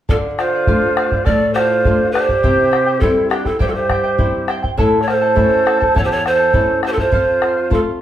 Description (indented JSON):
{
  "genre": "andean folk, Andean ensemble",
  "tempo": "102 BPM",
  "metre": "4/4",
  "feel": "straight",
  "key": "D minor",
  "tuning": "A4 = 440 Hz",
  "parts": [
    { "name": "breathy reedy large pan pipes", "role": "melody", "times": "0.1-7.8 s", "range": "G4 to D5", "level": "-16 LUFS", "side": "right 2 dB", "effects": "none" },
    { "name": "large quena", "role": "second line", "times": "0.1-7.8 s", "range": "D4 to Bb4", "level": "-23 LUFS", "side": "left 1 dB", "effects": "none" },
    { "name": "charango", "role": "accompaniment", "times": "0.1-8.0 s", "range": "E4 to A5", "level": "-24 LUFS", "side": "right 1 dB", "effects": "none" },
    { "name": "flamenco guitar", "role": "accompaniment", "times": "0.1-8.0 s", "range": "E2 to F4", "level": "-22 LUFS", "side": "left 3 dB", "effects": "none" },
    { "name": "bombo", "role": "percussion", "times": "0.1-7.8 s", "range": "none", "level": "-19 LUFS", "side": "equal", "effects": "none" }
  ],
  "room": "wet studio reverb, RT60 0.6 s",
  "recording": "heard from further back in the room",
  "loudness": "-13 LUFS",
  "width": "side -11 dB against mid",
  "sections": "0.1-8.0 A section",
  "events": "none",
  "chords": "0.1 Dm; 2.4 C; 4.8 A; 7.1 F"
}